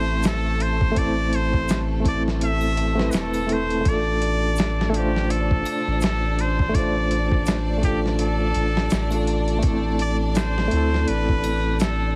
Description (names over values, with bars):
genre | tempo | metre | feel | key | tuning
trip hop | 83 BPM | 4/4 | swing 58% on 16ths | A minor | A4 = 438 Hz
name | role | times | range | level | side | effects
trumpet with straight mute | melody | 0.0-12.1 s | G4 to E5 | -30 LUFS | equal | tape echo
reed electric piano | accompaniment | 0.0-12.2 s | A3 to C5 | -28 LUFS | equal | overdrive, fast tremolo
clear chamber violin section | sustained chords | 0.0-12.2 s | A3 to D5 | -35 LUFS | equal | none
round analog bass | bass | 0.0-12.2 s | E1 to D2 | -26 LUFS | equal | none
dusty soul sampler-style drum kit | drums | 0.2-12.0 s | hi-hat, kick drum, snare drum | -26 LUFS | equal | studio reverb
tube shaker and triangle | percussion | 0.2-12.0 s | none | -46 LUFS | equal | none
room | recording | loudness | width
small room ambience | heavily compressed radio sound, vinyl crackle | -22 LUFS | mono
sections
0.0-12.2 A section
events
none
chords
0.0 Am; 3.9 Dm/A; 9.6 Am